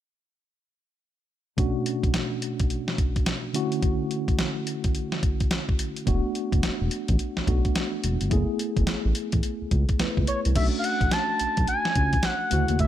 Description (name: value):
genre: R&B, new jack swing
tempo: 107 BPM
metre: 4/4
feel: swing 63% on 16ths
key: unclear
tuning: A4 = 440 Hz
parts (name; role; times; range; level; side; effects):
- mellow tine electric piano; accompaniment; 1.6-12.9 s; B2 to B4; -29 LUFS; equal; medium stereo tremolo
- clean 12-bit digital drum machine; drums; 1.6-12.9 s; crash cymbal, hi-hat, kick drum, snare drum; -25 LUFS; equal; none
- smooth synth bass; bass; 6.1-12.9 s; E1 to D#2; -25 LUFS; equal; none
- expressive synth lead; melody; 10.3-12.9 s; C#5 to A5; -26 LUFS; equal; chorus
room: little or no reverb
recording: none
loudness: -23 LUFS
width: side -12 dB against mid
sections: 1.6-10.6 A section; 10.6-12.9 B section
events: none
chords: 1.6 Bm9; 3.5 Dmaj7; 6.1 E7sus4; 8.3 F#m11 (rootless); 10.6 Bm9